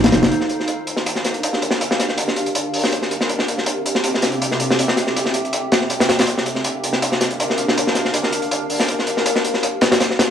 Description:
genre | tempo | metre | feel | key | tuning
drum and bass, jungle | 161 BPM | 4/4 | straight | G minor | A4 = 440 Hz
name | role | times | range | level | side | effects
granular cloud pad | sustained chords | 0.0-10.3 s | C4 to F5 | -22 LUFS | equal | built-in reverb, vintage 12-bit sampler grit
crunchy breakbeat drum kit | drums | 0.0-10.3 s | hi-hat, snare drum | -18 LUFS | left 1 dB | high-pass filter on kick, high-pass filter on hats, high-pass filter on snare, high-pass filter on room
room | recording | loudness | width
moderate plate reverb, RT60 1.1 s, studio ambience | dry, gritty hardware recording, transformer saturation, small room reverb | -17 LUFS | side -8 dB against mid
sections
0.3-10.3 A section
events
break 0.0-0.3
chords
0.3 Gm7; 3.3 Am7; 6.3 Gm7; 9.3 F7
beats
| 0.31 0.69 1.06 1.43 | 1.80 2.18 2.55 2.92 | 3.29 3.67 4.04 4.41 | 4.79 5.16 5.53 5.90 | 6.28 6.65 7.02 7.39 | 7.77 8.14 8.51 8.88 | 9.26 9.63 10.00

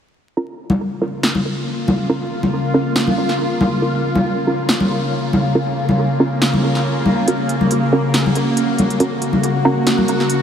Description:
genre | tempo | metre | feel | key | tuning
deep dubstep | 139 BPM | 4/4 | swing 55% on 16ths, half-time | Bb minor | A4 = 439 Hz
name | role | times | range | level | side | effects
bowed-like drone | sustained chords | 1.0-10.4 s | Db3 to Gb4 | -18 LUFS | left 1 dB | built-in reverb, phaser
filtered dub chord stab | stabs | 0.4-9.7 s | Db4 to Bb4 | -22 LUFS | right 2 dB | chorus, dub echo
congas | percussion | 0.7-10.1 s | none | -21 LUFS | left 1 dB | dub echo
deep house drum kit | drums | 1.2-10.4 s | hi-hat, snare drum | -23 LUFS | equal | none
room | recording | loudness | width
wet huge ambient reverb, RT60 7.6 s | dreamy mix soaked in reverb, vinyl crackle | -15 LUFS | side -8 dB against mid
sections
0.4-10.4 A section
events
none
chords
0.4 Bbm; 7.3 Gb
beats
| 0.37 0.80 1.23 1.67 | 2.10 2.53 2.96 3.39 | 3.82 4.25 4.69 5.12 | 5.55 5.98 6.41 6.84 | 7.28 7.71 8.14 8.57 | 9.00 9.44 9.87 10.30

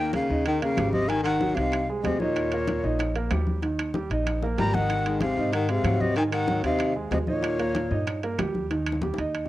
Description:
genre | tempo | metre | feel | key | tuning
Afro-Cuban jazz | 189 BPM | 4/4 | straight | Eb mixolydian | A4 = 437 Hz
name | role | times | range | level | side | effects
breathy jazz flute | melody | 0.0-8.2 s | Db5 to Bb5 | -30 LUFS | equal | cassette tape
breathy baritone saxophone | second line | 0.0-8.2 s | Bb2 to G3 | -28 LUFS | left 3 dB | cassette tape, analog delay
warm concert grand piano | accompaniment | 0.0-9.4 s | Eb3 to Eb5 | -30 LUFS | right 4 dB | cassette tape
upright bass | bass | 0.0-9.5 s | Ab1 to Ab2 | -30 LUFS | equal | none
bongos | percussion | 0.1-9.5 s | none | -38 LUFS | left 5 dB | none
congas | percussion | 0.1-9.5 s | none | -33 LUFS | left 1 dB | none
timbales | percussion | 0.1-9.5 s | none | -35 LUFS | right 6 dB | none
claves | percussion | 0.5-9.5 s | none | -42 LUFS | left 3 dB | none
room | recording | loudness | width
moderate spring reverb, RT60 1.4 s, small room reverb | home recording on cassette | -23 LUFS | side -15 dB against mid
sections
0.0-9.5 A section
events
drum fill 4.4-4.9, 8.7-9.5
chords
0.0 Eb9; 1.1 Ab7; 2.4 Eb7; 4.9 Ab7; 7.4 Eb7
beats
0.14 0.46 0.77 | 1.09 1.41 1.73 2.04 | 2.36 2.68 2.99 3.31 | 3.63 3.95 4.26 4.58 | 4.90 5.21 5.53 5.85 | 6.17 6.48 6.80 7.12 | 7.43 7.75 8.07 8.38 | 8.70 9.02 9.34

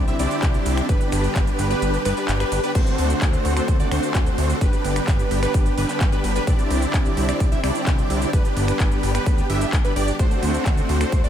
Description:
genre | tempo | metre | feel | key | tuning
EDM, festival progressive house | 129 BPM | 4/4 | straight | G major | A4 = 439 Hz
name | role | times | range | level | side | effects
lush unison pad | sustained chords | 0.0-11.3 s | D3 to G4 | -28 LUFS | left 1 dB | chorus, sidechain pumping
plucky unison lead | arpeggios | 0.0-11.3 s | B4 to E5 | -30 LUFS | equal | cassette tape, sidechain pumping, tape echo
big supersaw lead | riff | 0.0-11.3 s | A3 to E5 | -25 LUFS | right 1 dB | analog chorus, sidechain pumping, tape echo
fat analog bass | bass | 0.0-11.3 s | G1 to D2 | -24 LUFS | equal | sidechain pumping
big-room dance drum kit | drums | 0.1-11.3 s | crash cymbal, finger snaps, handclaps, hi-hat, ride cymbal, shaker | -30 LUFS | equal | none
electronic kick drum | drums | 0.4-11.2 s | none | -20 LUFS | equal | none
room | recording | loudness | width
light reverb, digital ambience | none | -18 LUFS | side -10 dB against mid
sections
0.0-2.8 A section; 2.8-11.3 A section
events
drop 0.0-2.8, 2.8-11.3; kick drops out 1.8-2.8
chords
0.0 Cadd9; 0.9 G; 2.8 D7; 4.6 G; 6.5 Cadd9; 8.3 G; 10.2 D7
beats
0.43 | 0.89 1.36 1.82 2.29 | 2.75 3.22 3.68 4.15 | 4.61 5.08 5.54 6.01 | 6.47 6.94 7.40 7.87 | 8.33 8.80 9.26 9.73 | 10.19 10.66 11.12

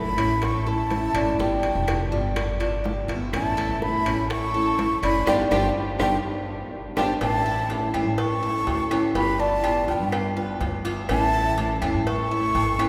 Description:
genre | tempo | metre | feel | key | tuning
latin, Cuban son and guajira | 124 BPM | 4/4 | straight | A major | A4 = 440 Hz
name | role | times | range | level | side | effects
breathy jazz flute | melody | 0.0-12.9 s | G5 to C#6 | -29 LUFS | equal | none
rich studio violin section | second line | 0.0-12.9 s | D4 to A4 | -37 LUFS | equal | none
flamenco guitar | accompaniment | 0.0-12.9 s | E3 to F4 | -30 LUFS | equal | none
Cuban tres | arpeggios | 0.0-12.9 s | G3 to B4 | -33 LUFS | equal | none
upright bass | bass | 0.0-12.9 s | F1 to A2 | -31 LUFS | equal | none
claves | percussion | 0.2-12.9 s | none | -44 LUFS | equal | none
timbales and agogo bells | percussion | 0.2-12.9 s | none | -35 LUFS | equal | none
bongos and cowbell | percussion | 0.4-12.9 s | none | -36 LUFS | equal | none
room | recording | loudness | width
wet cathedral reverb, RT60 5.0 s | recorded in a church or concert hall | -24 LUFS | mono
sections
0.0-7.2 A section; 7.2-12.9 B section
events
band accent 5.3-7.2; drum fill 6.7-7.2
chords
0.0 A; 1.4 G7; 3.3 A; 5.3 G7; 7.2 A; 9.2 G7; 11.1 A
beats
0.42 0.91 | 1.39 1.88 2.36 2.85 | 3.33 3.82 4.30 4.79 | 5.27 5.76 6.25 6.73 | 7.21 7.70 8.19 8.67 | 9.16 9.64 10.13 10.61 | 11.10 11.58 12.07 12.55

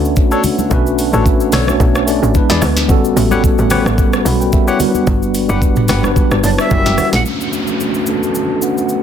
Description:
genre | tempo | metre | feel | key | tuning
amapiano | 110 BPM | 4/4 | swing 55% on 16ths | B minor | A4 = 440 Hz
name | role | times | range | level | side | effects
mellow tine electric piano | accompaniment | 0.0-9.0 s | G3 to B5 | -16 LUFS | equal | medium stereo tremolo, low-pass filter
dark French horn section | sustained chords | 0.0-9.0 s | C#3 to C#5 | -24 LUFS | left 1 dB | low-pass filter
tight log drum bass | bass | 0.0-7.2 s | F#1 to E2 | -17 LUFS | equal | none
afro-pop drum kit | drums | 0.1-9.0 s | hi-hat, kick drum, rim click, shaker, snare drum, toms | -16 LUFS | equal | none
percussive organ stab | stabs | 0.3-7.0 s | D4 to F#5 | -22 LUFS | left 5 dB | chorus, low-pass filter, digital delay
congas | percussion | 0.4-7.2 s | none | -24 LUFS | left 2 dB | none
breathy bright jazz flute | melody | 6.4-9.0 s | D5 to A5 | -21 LUFS | right 1 dB | low-pass filter, digital delay
downlifter | sound effects | 7.3-9.0 s | none | -22 LUFS | equal | none
room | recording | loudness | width
little or no reverb | dense, heavily limited modern master | -11 LUFS | side -9 dB against mid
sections
0.0-7.3 A section; 7.3-9.0 B section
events
drop 0.0-7.3; tine electric piano fill 6.2-7.3; filter sweep 7.3-9.0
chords
0.0 Bm9; 2.3 E7; 2.9 A13; 4.8 Gmaj7; 6.7 F#7b9; 7.3 Bm9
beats
0.16 | 0.71 1.25 1.80 2.35 | 2.89 3.44 3.98 4.53 | 5.07 5.62 6.16 6.71 | 7.25 7.80 8.35 8.89

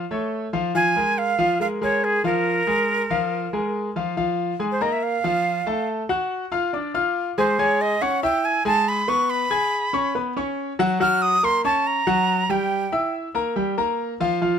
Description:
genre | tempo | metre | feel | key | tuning
jazz | 140 BPM | 4/4 | straight | Bb minor | A4 = 441 Hz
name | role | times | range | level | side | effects
bright grand piano | accompaniment | 0.0-14.6 s | F3 to Ab6 | -22 LUFS | left 2 dB | none
breathy bright jazz flute | melody | 0.8-13.1 s | Ab4 to F6 | -21 LUFS | right 2 dB | none
room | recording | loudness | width
light reverb | close, detailed microphones | -20 LUFS | side -7 dB against mid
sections
0.0-4.2 A section; 4.2-14.6 B section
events
flute solo 4.2-14.6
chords
0.0 Faug; 0.7 Bb5; 4.2 Fmadd11; 5.9 Gbmmaj7/A; 6.7 Fm6; 7.6 Amaj9/G# (rootless); 9.3 Abm; 10.2 Gbsus4; 11.0 Gb; 12.7 Edim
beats
0.32 | 0.75 1.18 1.60 2.03 | 2.46 2.89 3.31 3.74 | 4.17 4.60 5.02 5.45 | 5.88 6.31 6.73 7.16 | 7.59 8.02 8.44 8.87 | 9.30 9.72 10.15 10.58 | 11.00 11.43 11.86 12.28 | 12.71 13.14 13.56 13.99 | 14.42

